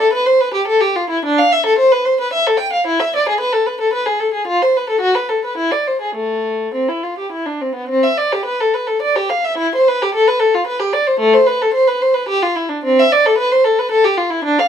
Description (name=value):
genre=classical, baroque-style suite movement for unaccompanied violin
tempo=110 BPM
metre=3/4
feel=rubato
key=A minor, C major from 7.9 s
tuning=A4 = 442 Hz
part: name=dark violin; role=solo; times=0.0-14.7 s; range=A3 to G5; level=-13 LUFS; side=equal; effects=none
room=light reverb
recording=none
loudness=-13 LUFS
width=side -8 dB against mid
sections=0.0-7.9 A section; 7.9-14.7 A section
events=none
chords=none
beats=0.12 0.66 | 1.21 1.76 2.30 | 2.83 3.37 3.91 | 4.46 5.02 5.58 | 6.15 6.74 7.32 | 7.91 8.47 9.01 | 9.57 10.13 10.67 | 11.20 11.74 12.28 | 12.82 13.37 13.91 | 14.45